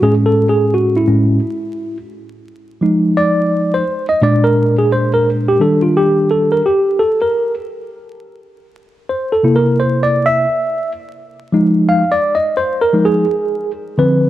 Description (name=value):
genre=hip hop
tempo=86 BPM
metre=4/4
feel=swing 61% on 16ths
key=unclear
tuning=A4 = 440 Hz
part: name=tine electric piano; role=solo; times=0.0-14.3 s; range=A2 to F5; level=-12 LUFS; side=equal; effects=overdrive, medium stereo tremolo
room=light reverb, digital ambience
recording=dark, warm production, vinyl crackle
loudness=-12 LUFS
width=side -14 dB against mid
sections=0.0-14.3 A section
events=tine electric piano solo 0.0-14.3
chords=0.0 Amaj7; 2.8 Fm7; 4.2 Bb7; 5.6 Ebmaj7; 8.4 C7; 11.2 Fm7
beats=| 0.02 0.72 1.42 2.12 | 2.81 3.51 4.21 4.91 | 5.60 6.30 7.00 7.70 | 8.39 9.09 9.79 10.49 | 11.19 11.88 12.58 13.28 | 13.98